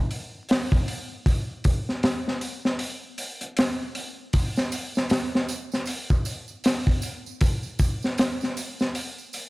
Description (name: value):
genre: trip hop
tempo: 78 BPM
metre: 4/4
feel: swing 60% on 16ths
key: none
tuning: none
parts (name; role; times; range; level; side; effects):
- crunchy breakbeat drum kit; drums; 0.1-9.5 s; hi-hat, kick drum, snare drum; -23 LUFS; equal; none
- tambourine; percussion; 4.3-9.5 s; none; -40 LUFS; right 6 dB; none
room: studio reverb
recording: vinyl crackle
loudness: -24 LUFS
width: side -22 dB against mid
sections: 0.0-9.5 A section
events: fade-out 8.4-9.5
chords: none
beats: 0.49 | 1.26 2.03 2.79 3.56 | 4.33 5.10 5.87 6.64 | 7.41 8.18 8.95